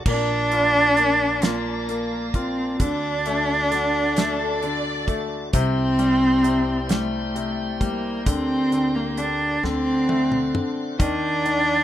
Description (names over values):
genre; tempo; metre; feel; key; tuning
six-eight pop ballad; 44 BPM (dotted quarters); 6/8; straight; unclear; A4 = 440 Hz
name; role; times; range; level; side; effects
bright grand piano; accompaniment; 0.0-11.8 s; C3 to F4; -29 LUFS; left 5 dB; none
tonewheel organ; sustained chords; 0.0-11.8 s; Eb3 to A5; -32 LUFS; equal; slow rotary speaker
upright bass; bass; 0.0-11.8 s; Bb1 to Eb2; -31 LUFS; equal; none
warm cello; melody; 0.1-11.8 s; A3 to D4; -21 LUFS; equal; ping-pong delay
damped 70s drum kit; drums; 0.1-11.7 s; crash cymbal, hi-hat, kick drum, snare drum, toms; -24 LUFS; right 1 dB; none
warm studio violin section; second line; 3.7-5.3 s; F#4 to D5; -30 LUFS; left 2 dB; none
room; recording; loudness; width
moderate small room reverb, RT60 0.5 s; rough home demo mix; -19 LUFS; side -12 dB against mid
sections
0.1-11.8 A section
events
drum fill 9.6-11.0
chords
0.1 Bbmaj7; 2.8 D; 5.5 C; 8.3 Gm/D; 9.6 D7; 11.0 Ebmaj7